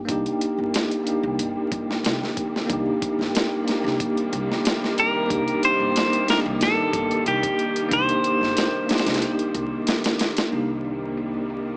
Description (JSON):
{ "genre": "trip hop", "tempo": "92 BPM", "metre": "4/4", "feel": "straight", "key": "C minor", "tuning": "A4 = 443 Hz", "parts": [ { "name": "bell-like tine electric piano", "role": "accompaniment", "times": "0.0-11.8 s", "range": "Bb3 to G4", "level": "-28 LUFS", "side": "equal", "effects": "tremolo, vintage 12-bit sampler grit" }, { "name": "upright bass", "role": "bass", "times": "0.0-11.8 s", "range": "G1 to C2", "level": "-38 LUFS", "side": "equal", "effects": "none" }, { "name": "wind-like tuned noise texture", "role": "texture", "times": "0.0-11.8 s", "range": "G4", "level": "-38 LUFS", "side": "equal", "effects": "built-in reverb" }, { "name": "rich studio string section", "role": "sustained chords", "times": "0.1-11.8 s", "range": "C3 to Bb3", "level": "-33 LUFS", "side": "equal", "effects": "none" }, { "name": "dusty soul sampler-style drum kit", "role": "drums", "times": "0.1-11.7 s", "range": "hi-hat, kick drum, snare drum", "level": "-27 LUFS", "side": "equal", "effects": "overdrive, low-pass filter on hats, low-pass filter on kick, low-pass filter on snare" }, { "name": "clean electric guitar", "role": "melody", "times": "5.0-9.8 s", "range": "G4 to C5", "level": "-25 LUFS", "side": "equal", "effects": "vintage 12-bit sampler grit, tape echo" } ], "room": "light reverb", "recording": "dry, gritty hardware recording, vinyl crackle, small speaker sound", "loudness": "-23 LUFS", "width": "mono", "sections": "0.0-10.5 A section; 10.5-11.8 B section", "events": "break 9.2-10.5", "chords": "0.0 Cm7" }